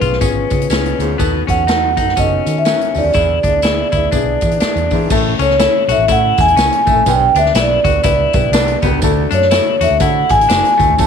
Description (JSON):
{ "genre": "uptempo 1960s-style soul", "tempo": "122 BPM", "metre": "4/4", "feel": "swing 60% on 8ths", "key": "A major", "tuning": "A4 = 440 Hz", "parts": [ { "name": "vibraphone with soft mallets", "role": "melody", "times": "0.0-11.1 s", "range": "B4 to A5", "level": "-14 LUFS", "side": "right 1 dB", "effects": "none" }, { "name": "warm upright piano", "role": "accompaniment", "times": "0.0-11.1 s", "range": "A3 to B4", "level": "-21 LUFS", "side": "left 13 dB", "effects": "none" }, { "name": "clean electric guitar", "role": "riff", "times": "0.0-10.9 s", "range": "A3 to F#4", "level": "-22 LUFS", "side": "left 14 dB", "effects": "none" }, { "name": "vintage muted fingered electric bass", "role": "bass", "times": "0.0-11.1 s", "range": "F#1 to E3", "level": "-19 LUFS", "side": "right 2 dB", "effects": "none" }, { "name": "swinging big-band drum kit", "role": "drums", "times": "0.0-11.1 s", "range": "crash cymbal, hi-hat, kick drum, snare drum", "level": "-18 LUFS", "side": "right 1 dB", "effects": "none" }, { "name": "tambourine", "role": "percussion", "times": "0.0-11.1 s", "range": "none", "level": "-31 LUFS", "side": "right 18 dB", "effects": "none" }, { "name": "raspy baritone saxophone", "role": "riff", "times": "1.0-11.1 s", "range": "D2 to B2", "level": "-25 LUFS", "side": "right 14 dB", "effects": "none" } ], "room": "light reverb, small room ambience", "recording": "1960s-style stereo with parts hard left and right", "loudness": "-11 LUFS", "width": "side -7 dB against mid", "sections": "0.0-5.1 A section; 5.1-11.1 B section", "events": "none", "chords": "0.0 C#7; 1.2 B7/D#; 3.2 E7; 5.1 A; 7.1 G/B; 9.0 D" }